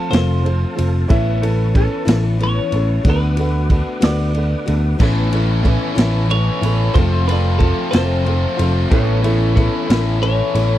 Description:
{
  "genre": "folk rock and heartland rock",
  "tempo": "62 BPM (dotted quarters)",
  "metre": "6/8",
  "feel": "straight",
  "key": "unclear",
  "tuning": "A4 = 445 Hz",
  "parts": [
    { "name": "twelve-string electric guitar", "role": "melody", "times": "0.0-10.8 s", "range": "A4 to D5", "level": "-24 LUFS", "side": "left 1 dB", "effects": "phaser" },
    { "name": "picked plugged-in steel-string acoustic guitar", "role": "accompaniment", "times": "0.0-10.8 s", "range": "F2 to F#4", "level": "-24 LUFS", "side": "left 6 dB", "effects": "none" },
    { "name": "warm upright piano", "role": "accompaniment", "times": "0.0-10.8 s", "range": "C4 to D5", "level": "-27 LUFS", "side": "right 5 dB", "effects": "none" },
    { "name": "tonewheel organ", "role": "sustained chords", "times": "0.0-10.8 s", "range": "A4 to D6", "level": "-33 LUFS", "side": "equal", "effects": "slow rotary speaker, chorus vibrato" },
    { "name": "picked electric bass", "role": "bass", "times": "0.1-10.8 s", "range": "F1 to D2", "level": "-17 LUFS", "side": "equal", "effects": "none" },
    { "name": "vintage drum kit", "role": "drums", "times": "0.1-10.7 s", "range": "crash cymbal, kick drum, ride cymbal, snare drum", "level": "-19 LUFS", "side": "equal", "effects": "none" },
    { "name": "electric slide guitar", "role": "second line", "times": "1.1-2.2, 8.9-10.0 s", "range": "A4 to E5", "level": "-25 LUFS", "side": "equal", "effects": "none" },
    { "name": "biting overdriven guitar", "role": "riff", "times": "5.0-10.8 s", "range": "F2 to F4", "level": "-23 LUFS", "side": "left 1 dB", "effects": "none" }
  ],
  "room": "little or no reverb",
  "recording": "dry, close 1970s-style studio recording",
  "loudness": "-14 LUFS",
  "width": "side -13 dB against mid",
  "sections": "0.0-10.8 A section",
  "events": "none",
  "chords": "0.0 F; 1.1 Aadd9; 3.1 D6; 5.0 Aadd9; 7.0 F; 8.9 Aadd9",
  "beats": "0.13 | 1.10 2.08 | 3.06 4.03 | 5.01 5.98 | 6.96 7.93 | 8.91 9.89"
}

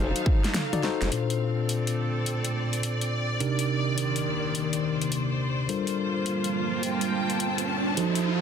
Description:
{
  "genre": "glitch hop",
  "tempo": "105 BPM",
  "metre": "4/4",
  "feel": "swing 64% on 16ths",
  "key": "unclear",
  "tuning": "A4 = 440 Hz",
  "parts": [
    { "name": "dark analog pad", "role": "sustained chords", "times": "0.0-8.4 s", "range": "Bb2 to A5", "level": "-33 LUFS", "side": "right 1 dB", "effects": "chorus, sidechain pumping" },
    { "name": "mellow tine electric piano", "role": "stabs", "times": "0.0-8.4 s", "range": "Bb2 to D5", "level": "-28 LUFS", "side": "moving between left 6 dB and right 7 dB", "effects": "auto-pan, sidechain pumping, low-pass filter, digital delay" },
    { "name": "formant-sweep wobble bass", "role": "bass", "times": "0.0-1.1 s", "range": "F1", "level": "-28 LUFS", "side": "equal", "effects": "chorus, overdrive" },
    { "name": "clear studio string section", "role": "texture", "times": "0.0-8.4 s", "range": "Eb3 to A5", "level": "-32 LUFS", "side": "left 2 dB", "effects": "sidechain pumping" },
    { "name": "dubstep drum kit", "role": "drums", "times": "0.2-8.2 s", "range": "hi-hat, snare drum, toms", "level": "-30 LUFS", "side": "left 2 dB", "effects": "none" },
    { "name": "riser", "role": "sound effects", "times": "6.4-8.4 s", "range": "none", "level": "-33 LUFS", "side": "right 1 dB", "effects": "none" }
  ],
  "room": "light reverb",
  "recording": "dense, heavily limited modern master",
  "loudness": "-24 LUFS",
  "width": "side -7 dB against mid",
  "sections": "0.0-1.1 A section; 1.1-8.4 B section",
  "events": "drum fill 0.0-1.1; band accent 1.0; filter sweep on tine electric piano 1.1-8.4; riser 6.4-8.4",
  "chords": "0.0 F7b9; 1.1 Bbmaj9; 3.4 Cm9; 5.7 Gm11",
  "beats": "0.55 | 1.12 1.69 2.26 2.83 | 3.40 3.98 4.55 5.12 | 5.69 6.26 6.83 7.40 | 7.98"
}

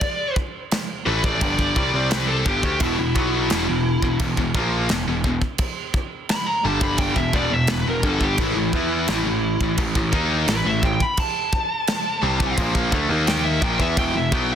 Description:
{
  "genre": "heavy metal",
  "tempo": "86 BPM",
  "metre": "4/4",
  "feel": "straight",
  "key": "E minor",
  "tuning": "A4 = 440 Hz",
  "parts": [
    { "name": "high-gain lead guitar", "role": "melody", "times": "0.0-14.6 s", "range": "E4 to B5", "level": "-24 LUFS", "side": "equal", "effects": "distortion" },
    { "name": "modern studio drum kit", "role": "drums", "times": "0.0-14.5 s", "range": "crash cymbal, kick drum, snare drum", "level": "-24 LUFS", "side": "equal", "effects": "none" },
    { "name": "scooped high-gain guitar", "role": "riff", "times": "1.1-14.6 s", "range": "E2 to E4", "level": "-24 LUFS", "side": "left 2 dB", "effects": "distortion" },
    { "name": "overdriven picked electric bass", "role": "bass", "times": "1.1-14.6 s", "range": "E1 to E2", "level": "-25 LUFS", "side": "equal", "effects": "none" },
    { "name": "distorted electric guitar", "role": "riff", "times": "2.8-14.6 s", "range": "E2 to E4", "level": "-28 LUFS", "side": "equal", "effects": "distortion" },
    { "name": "chamber organ, principal", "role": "sustained chords", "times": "14.0-14.6 s", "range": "E4 to E5", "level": "-31 LUFS", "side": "right 2 dB", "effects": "none" }
  ],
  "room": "small room reverb",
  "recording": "dense, heavily limited modern master",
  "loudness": "-19 LUFS",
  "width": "side -9 dB against mid",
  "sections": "0.0-14.6 A section",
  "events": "lead electric guitar solo 0.0-14.6",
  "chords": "0.0 G5; 2.8 Em; 8.4 A5; 14.0 Em",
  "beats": "| 0.02 0.71 1.41 2.11 | 2.81 3.50 4.20 4.90 | 5.60 6.29 6.99 7.69 | 8.39 9.08 9.78 10.48 | 11.18 11.88 12.57 13.27 | 13.97"
}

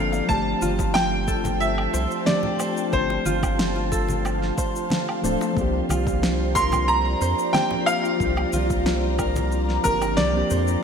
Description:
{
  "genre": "sunset chillout",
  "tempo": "91 BPM",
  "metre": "4/4",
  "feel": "straight",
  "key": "unclear",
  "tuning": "A4 = 440 Hz",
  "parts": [
    { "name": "bright grand piano", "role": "melody", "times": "0.0-10.8 s", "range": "Bb4 to C6", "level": "-25 LUFS", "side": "equal", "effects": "ping-pong delay, shimmer reverb" },
    { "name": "soft electric-piano-like synth keys", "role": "accompaniment", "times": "0.0-10.8 s", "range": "F3 to A4", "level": "-27 LUFS", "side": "moving between left 4 dB and right 5 dB", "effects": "chorus, auto-pan, vintage 12-bit sampler grit, shimmer reverb" },
    { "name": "ethereal airy pad", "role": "sustained chords", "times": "0.0-10.8 s", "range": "F4 to Bb5", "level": "-29 LUFS", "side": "left 2 dB", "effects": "ensemble chorus, built-in reverb, phaser, shimmer reverb" },
    { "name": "round analog bass", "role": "bass", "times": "0.0-10.8 s", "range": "D1 to F2", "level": "-26 LUFS", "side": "equal", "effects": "none" },
    { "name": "electronic cabasa, snare drum and woodblock", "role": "drums", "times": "0.1-10.8 s", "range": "none", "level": "-29 LUFS", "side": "equal", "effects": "overdrive, studio reverb" },
    { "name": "bongos and congas", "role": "percussion", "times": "0.1-10.8 s", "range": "none", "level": "-34 LUFS", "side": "left 2 dB", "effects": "none" },
    { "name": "electronic kick drum", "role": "drums", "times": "0.3-10.0 s", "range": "none", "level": "-28 LUFS", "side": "equal", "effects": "studio reverb" },
    { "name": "Celtic harp", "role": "arpeggios", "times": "0.6-10.8 s", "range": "F4 to C5", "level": "-32 LUFS", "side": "equal", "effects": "ping-pong delay, shimmer reverb" }
  ],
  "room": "moderate lush hall reverb, RT60 2.1 s",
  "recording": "bright 1980s-style digital production",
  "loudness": "-20 LUFS",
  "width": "side -7 dB against mid",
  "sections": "0.0-10.8 A section",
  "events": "none",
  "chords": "0.3 G9sus4; 5.6 C9sus4",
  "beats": "| 0.29 0.95 1.61 2.27 | 2.93 3.59 4.25 4.91 | 5.57 6.22 6.88 7.54 | 8.20 8.86 9.52 10.18"
}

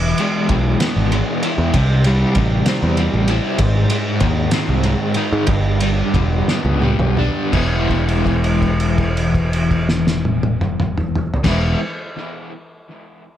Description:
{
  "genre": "psychedelic rock",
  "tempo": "55-65 BPM (dotted quarters)",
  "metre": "6/8",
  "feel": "straight",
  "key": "unclear",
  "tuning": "A4 = 441 Hz",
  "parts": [
    { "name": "overdriven semi-hollow guitar", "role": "riff", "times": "0.0-11.8 s", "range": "G2 to E4", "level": "-19 LUFS", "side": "left 1 dB", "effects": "tremolo, analog delay" },
    { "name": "picked electric bass", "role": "bass", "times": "0.0-11.7 s", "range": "E1 to G#2", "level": "-19 LUFS", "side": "equal", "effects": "none" },
    { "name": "cloth-damped thuddy drum kit", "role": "drums", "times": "0.2-11.6 s", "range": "crash cymbal, kick drum, ride cymbal, snare drum, toms", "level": "-21 LUFS", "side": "equal", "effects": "none" }
  ],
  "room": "studio ambience",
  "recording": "echo-heavy mix",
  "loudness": "-15 LUFS",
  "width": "side -11 dB against mid",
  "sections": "0.0-7.5 A section; 7.5-11.9 B section",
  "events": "slowing down 3.6-7.5; drum fill 6.5-7.5; held note 7.5-11.4",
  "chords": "0.0 E; 1.7 C; 3.6 G#; 5.5 G; 7.5 E",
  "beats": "0.80 | 1.73 2.66 | 3.59 4.52 | 5.48 6.48 | 7.53 8.62 | 9.71 10.79"
}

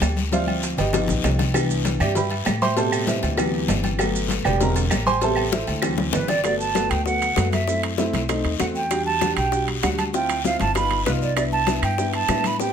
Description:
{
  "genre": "Afro-Cuban jazz",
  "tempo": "195 BPM",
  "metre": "4/4",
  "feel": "straight",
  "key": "G major",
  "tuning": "A4 = 440 Hz",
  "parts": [
    { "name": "warm baby grand piano", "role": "accompaniment", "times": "0.0-12.7 s", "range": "B2 to C6", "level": "-24 LUFS", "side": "right 1 dB", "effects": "none" },
    { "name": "upright bass", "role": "bass", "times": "0.0-12.7 s", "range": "E1 to A2", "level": "-26 LUFS", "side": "equal", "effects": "none" },
    { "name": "congas", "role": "percussion", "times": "0.0-12.7 s", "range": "none", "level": "-30 LUFS", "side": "left 4 dB", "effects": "none" },
    { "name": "cowbell and bongos", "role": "percussion", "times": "0.0-12.7 s", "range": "none", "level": "-29 LUFS", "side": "left 8 dB", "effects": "none" },
    { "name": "guiro", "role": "percussion", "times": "0.0-12.7 s", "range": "none", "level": "-33 LUFS", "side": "left 8 dB", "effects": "none" },
    { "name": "maracas", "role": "percussion", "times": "0.0-12.7 s", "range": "none", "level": "-36 LUFS", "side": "right 7 dB", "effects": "none" },
    { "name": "timbales and agogo bells", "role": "percussion", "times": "0.0-12.6 s", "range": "none", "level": "-30 LUFS", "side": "right 5 dB", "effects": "none" },
    { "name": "claves", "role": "percussion", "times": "1.6-6.0, 11.4-12.4 s", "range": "none", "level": "-32 LUFS", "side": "right 4 dB", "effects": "none" },
    { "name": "breathy mellow silver concert flute", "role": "melody", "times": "6.1-12.7 s", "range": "B4 to B5", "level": "-23 LUFS", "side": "right 4 dB", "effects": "plate reverb" }
  ],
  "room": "moderate studio reverb, RT60 0.7 s",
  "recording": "none",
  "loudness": "-19 LUFS",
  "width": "side -8 dB against mid",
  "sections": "0.0-6.5 A section; 6.5-12.7 B section",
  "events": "grand piano solo 0.0-6.5; drum fill 0.3-1.5, 5.5-6.5",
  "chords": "0.3 Dm7; 0.9 G7alt; 1.5 Cmaj9; 2.8 Am9; 3.4 D13; 4.0 Gmaj9; 4.6 E7alt; 5.2 Am7; 5.8 D9; 6.5 Gmaj9; 7.7 F#m7b5; 8.3 B7b9; 8.9 Em9; 10.1 Dm7; 10.8 Gaug7; 11.4 Cmaj9",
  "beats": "0.02 | 0.32 0.63 0.94 1.24 | 1.55 1.85 2.16 2.47 | 2.77 3.08 3.39 3.69 | 4.00 4.30 4.61 4.92 | 5.22 5.53 5.84 6.14 | 6.45 6.76 7.07 7.37 | 7.68 7.99 8.30 8.60 | 8.91 9.22 9.53 9.84 | 10.14 10.45 10.76 11.07 | 11.37 11.68 11.99 12.30 | 12.60"
}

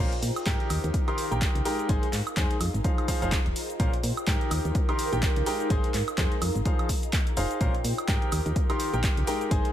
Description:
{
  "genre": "piano house",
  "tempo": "126 BPM",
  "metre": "4/4",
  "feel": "swing 58% on 16ths",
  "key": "unclear",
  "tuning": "A4 = 443 Hz",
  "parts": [
    { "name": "bright concert grand piano", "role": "riff", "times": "0.0-9.7 s", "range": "Bb2 to C6", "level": "-31 LUFS", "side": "left 1 dB", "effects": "sidechain pumping, ping-pong delay" },
    { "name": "solid FM bass", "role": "bass", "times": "0.0-9.6 s", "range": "Eb1 to Bb2", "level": "-29 LUFS", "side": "equal", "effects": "sidechain pumping" },
    { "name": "ethereal airy pad", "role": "texture", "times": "0.0-9.7 s", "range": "Eb4 to F5", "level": "-34 LUFS", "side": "right 1 dB", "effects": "ensemble chorus, built-in reverb, sidechain pumping" },
    { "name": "punchy analog drum machine", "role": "drums", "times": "0.1-9.7 s", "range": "handclaps, hi-hat, shaker, woodblock", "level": "-33 LUFS", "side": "right 1 dB", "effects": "overdrive" },
    { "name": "electronic kick drum", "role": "drums", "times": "0.5-9.6 s", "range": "none", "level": "-26 LUFS", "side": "equal", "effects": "overdrive" }
  ],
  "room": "little or no reverb",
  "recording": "none",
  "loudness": "-24 LUFS",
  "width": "side -11 dB against mid",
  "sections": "0.0-9.7 A section",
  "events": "none",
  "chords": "0.0 Bbsus2; 1.9 Ab6; 2.8 Fm7; 3.8 Bbsus2; 5.7 Ab6; 6.7 Fm7; 7.6 Bbsus2",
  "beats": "0.46 0.94 1.42 | 1.89 2.37 2.85 3.32 | 3.80 4.27 4.75 5.23 | 5.70 6.18 6.65 7.13 | 7.61 8.08 8.56 9.04 | 9.51"
}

